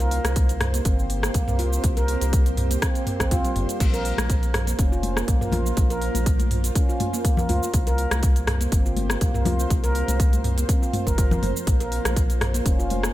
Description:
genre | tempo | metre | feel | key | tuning
afro house | 122 BPM | 4/4 | swing 54% on 16ths | unclear | A4 = 445 Hz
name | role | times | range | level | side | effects
ethereal airy pad | sustained chords | 0.0-13.1 s | Bb3 to C5 | -33 LUFS | right 2 dB | ensemble chorus, built-in reverb, tremolo, sidechain pumping
handpan | arpeggios | 0.0-13.1 s | F3 to Bb4 | -28 LUFS | equal | sidechain pumping, tape echo
round analog bass | bass | 0.0-13.1 s | F1 to Db2 | -25 LUFS | equal | sidechain pumping
house drum kit | drums | 0.0-13.1 s | crash cymbal, hi-hat, rim click, shaker, toms | -28 LUFS | equal | none
electronic kick drum | drums | 0.4-12.8 s | none | -22 LUFS | equal | none
congas | percussion | 4.2-13.0 s | none | -30 LUFS | left 4 dB | none
room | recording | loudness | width
little or no reverb | none | -20 LUFS | side -15 dB against mid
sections
0.0-13.1 A section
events
none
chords
0.0 C5; 3.8 Bb5; 7.7 C5; 11.7 Bb5

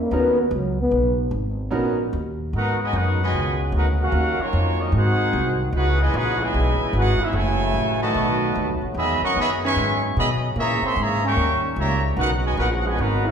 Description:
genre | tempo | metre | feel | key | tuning
jazz | 149 BPM | 4/4 | swing 66% on 8ths | G# minor | A4 = 437 Hz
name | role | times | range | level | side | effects
breathy trombone | melody | 0.0-1.2 s | D#3 to B3 | -20 LUFS | left 1 dB | none
upright bass | bass | 0.0-13.3 s | F#1 to B2 | -23 LUFS | equal | none
clear concert grand piano | accompaniment | 0.1-2.0 s | B3 to A#4 | -25 LUFS | right 3 dB | none
brilliant trombone section | second line | 2.5-13.3 s | B2 to F#4 | -26 LUFS | right 1 dB | none
bright trombone section | sustained chords | 2.5-13.3 s | C#3 to G#4 | -31 LUFS | left 1 dB | none
warm trumpet section | melody | 2.6-13.3 s | A#3 to C#6 | -23 LUFS | equal | none
room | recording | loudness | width
wet recital hall reverb, RT60 1.4 s | recorded in a church or concert hall | -19 LUFS | side -7 dB against mid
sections
0.0-2.5 A section; 2.5-13.3 B section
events
trombone solo 0.0-2.5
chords
0.0 G#m11; 4.1 D#m9; 4.9 G#7; 5.7 C#m9; 7.3 F#m9; 8.2 B7; 9.0 Emaj7; 10.6 A#m7b5; 11.4 D#7b9; 12.2 G#m11

